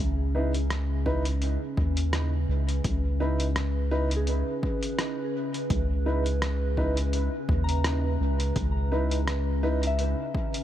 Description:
ambient dub; 84 BPM; 4/4; swing 55% on 16ths; C# dorian; A4 = 440 Hz
warbly tape-like pad; sustained chords; 0.0-10.6 s; C#3 to E5; -32 LUFS; equal; chorus, built-in reverb
soft dub sub bass; bass; 0.0-10.1 s; C#2 to D#2; -26 LUFS; equal
dark upright piano; stabs; 0.3-9.8 s; D#4 to B4; -33 LUFS; right 1 dB; dub echo
lo-fi sampler-style drum kit; drums; 0.5-10.6 s; hi-hat, rim click; -34 LUFS; equal; dub echo
electronic kick drum; drums; 1.1-10.5 s; -30 LUFS; equal; overdrive
soft synth bell; arpeggios; 4.2-10.6 s; G#4 to A#5; -38 LUFS; left 3 dB; chorus, dub echo
little or no reverb; -24 LUFS; side -12 dB against mid
0.0-10.6 A section
0.0 C#m7
0.70 1.42 2.13 | 2.85 3.56 4.28 4.99 | 5.70 6.42 7.13 7.85 | 8.56 9.28 9.99

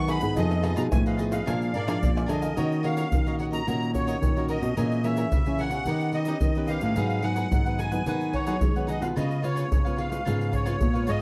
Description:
samba and choro; 109 BPM; 4/4; straight; Eb minor; A4 = 442 Hz
musette accordion; melody; 0.0-11.2 s; Db5 to Db6; -35 LUFS; equal
cavaquinho; accompaniment; 0.0-11.2 s; D4 to Ab5; -37 LUFS; equal
nylon-string guitar; accompaniment; 0.0-11.2 s; F2 to Ab4; -33 LUFS; equal
nylon-string guitar; bass; 0.0-11.2 s; F2 to Ab3; -30 LUFS; equal
egg shaker, pandeiro, tamborim and surdo; percussion; 0.1-11.2 s; -31 LUFS; equal
little or no reverb; dry, close 1970s-style studio recording; -26 LUFS; mono
0.0-2.6 A section; 2.6-11.2 B section
0.4 Fm7b5; 1.5 Bb7; 2.6 Ebm7; 4.8 Bbm7b5; 5.9 Ebaug7; 7.0 Abm7; 9.2 Db7
| 0.38 0.93 1.48 2.02 | 2.57 3.12 3.67 4.22 | 4.77 5.32 5.87 6.42 | 6.96 7.51 8.06 8.61 | 9.16 9.71 10.26 10.81

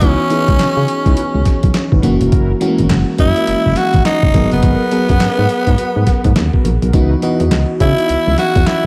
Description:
R&B, new jack swing; 104 BPM; 4/4; swing 61% on 16ths; C# dorian; A4 = 440 Hz
growling tenor saxophone; melody; 0.0-8.9 s; B3 to F#4; -19 LUFS; equal
FM electric piano; accompaniment; 0.0-8.9 s; E3 to D#5; -21 LUFS; equal; chorus, tube saturation
mellow synth brass; stabs; 0.0-8.1 s; B3 to B4; -28 LUFS; equal; chorus, diffuse ambient delay
solid FM bass; bass; 0.0-8.6 s; E1 to C#3; -18 LUFS; equal
boom bap sampler-style drum kit; drums; 0.0-8.8 s; handclaps, hi-hat, kick drum, snare drum; -18 LUFS; equal
moderate plate reverb, RT60 3.1 s; dreamy mix soaked in reverb; -14 LUFS; mono
0.0-8.9 A section
0.0 C#m11; 2.0 F#7; 4.3 G#m9; 6.9 C#m11
| 0.01 0.59 1.17 1.74 | 2.32 2.90 3.47 4.05 | 4.63 5.21 5.78 6.36 | 6.94 7.51 8.09 8.67

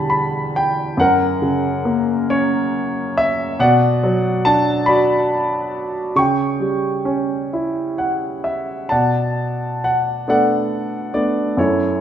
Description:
classical, lyrical solo piano; 42-48 BPM (dotted quarters); 6/8; rubato; B minor; A4 = 440 Hz
warm grand piano; solo; 0.0-12.0 s; E2 to C#6; -16 LUFS; equal
moderate concert hall reverb, RT60 2.2 s; minimal, uncompressed stereo recording; -16 LUFS; side -9 dB against mid
0.0-8.9 A section; 8.9-12.0 B section
grand piano fill 7.5-8.9
0.0 Em7; 1.0 F#; 3.6 Bm; 6.1 C#dim; 8.9 Bm7
| 0.98 2.29 | 3.58 4.86 | 6.15 7.50 | 8.91 10.27 | 11.57

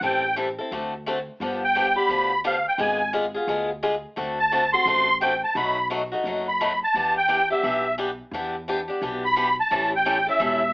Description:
acoustic string swing (jazz manouche); 173 BPM; 4/4; swing 62% on 8ths; D mixolydian; A4 = 440 Hz
musette accordion; melody; 0.0-10.7 s; E5 to C6; -20 LUFS; equal
picked swing-style acoustic guitar; accompaniment; 0.0-10.6 s; B2 to A4; -26 LUFS; left 1 dB
upright bass; bass; 0.0-10.7 s; E1 to E2; -37 LUFS; equal
moderate studio reverb, RT60 0.6 s; AM radio sound; -21 LUFS; side -25 dB against mid
0.0-10.7 A section
accordion solo 0.0-10.7
0.0 Am7; 0.7 D7; 1.4 G7; 2.8 G#dim7; 4.2 D7; 5.6 B7; 6.9 Em7; 9.7 A7
| 0.02 0.37 0.71 1.06 | 1.41 1.75 2.10 2.44 | 2.79 3.13 3.48 3.83 | 4.17 4.52 4.87 5.21 | 5.56 5.90 6.25 6.60 | 6.94 7.29 7.63 7.98 | 8.33 8.67 9.02 9.36 | 9.71 10.06 10.40

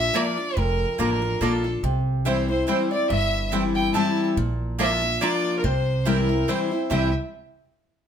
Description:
bluegrass; 142 BPM; 3/4; swing 55% on 8ths; C mixolydian; A4 = 440 Hz
bright fiddle; melody; 0.0-7.1 s; A4 to A5; -26 LUFS; right 1 dB
lap resonator guitar; second line; 0.0-7.1 s; A4 to A5; -33 LUFS; left 1 dB
picked steel-string acoustic guitar; accompaniment; 0.0-7.1 s; F2 to F4; -24 LUFS; left 2 dB
upright bass; bass; 0.0-7.1 s; F1 to C2; -26 LUFS; right 1 dB
mandolin; stabs; 0.1-7.1 s; Bb3 to Bb5; -29 LUFS; right 5 dB
moderate studio reverb, RT60 0.9 s; -20 LUFS; side -8 dB against mid
0.0-6.9 A section; 6.9-8.1 B section
0.0 Bb; 1.8 C; 4.4 Bb; 5.6 C
0.15 | 0.57 0.99 1.42 | 1.84 2.26 2.68 | 3.10 3.53 3.95 | 4.37 4.80 5.22 | 5.64 6.06 6.49 | 6.91

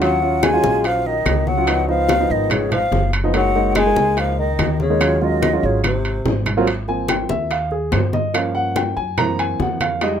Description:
Afro-Cuban jazz; 144 BPM; 4/4; straight; Db major, Ab major from 6.7 s; A4 = 440 Hz
breathy concert flute; melody; 0.0-6.4 s; C5 to Ab5; -21 LUFS; left 1 dB
mellow tenor saxophone; second line; 0.0-6.4 s; C3 to Ab3; -24 LUFS; left 4 dB
warm grand piano; accompaniment; 0.0-10.2 s; Fb3 to Bb5; -20 LUFS; right 2 dB
upright bass; bass; 0.0-10.2 s; Gb1 to G2; -23 LUFS; equal
bongos; percussion; 0.0-10.2 s; -28 LUFS; left 5 dB
congas; percussion; 0.0-10.2 s; -25 LUFS; equal
timbales; percussion; 0.0-10.2 s; -25 LUFS; right 3 dB
claves; percussion; 0.4-10.0 s; -30 LUFS; equal
little or no reverb; minimal, uncompressed stereo recording; -16 LUFS; side -8 dB against mid
0.0-6.7 A section; 6.7-10.2 B section
drum fill 5.8-6.7; grand piano solo 6.7-10.2
0.0 Ebm9; 1.7 Db7; 3.3 Gb69; 5.0 Ebm11; 5.8 Ab; 6.7 Ab6; 8.3 Gm7b5; 9.2 Gb7#11
| 0.02 0.43 0.85 1.26 | 1.68 2.09 2.51 2.92 | 3.34 3.76 4.17 4.59 | 5.01 5.42 5.84 6.26 | 6.67 7.09 7.51 7.93 | 8.34 8.76 9.18 9.60 | 10.01

